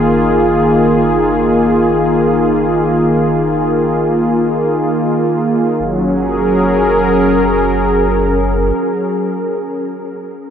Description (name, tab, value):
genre	ambient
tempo	free time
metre	none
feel	none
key	F# major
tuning	A4 = 440 Hz
part	warm analog pad	sustained chords	0.0-9.8 s	D#3 to A#4	-12 LUFS	equal	chorus
part	round analog bass	bass	0.0-8.7 s	F#1	-25 LUFS	equal	none
room	wet huge ambient reverb, RT60 7.8 s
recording	dark, warm production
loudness	-11 LUFS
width	side -8 dB against mid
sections	0.0-5.8 A section; 5.8-9.8 B section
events	none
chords	0.0 D#madd9/F#; 5.8 F#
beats	free time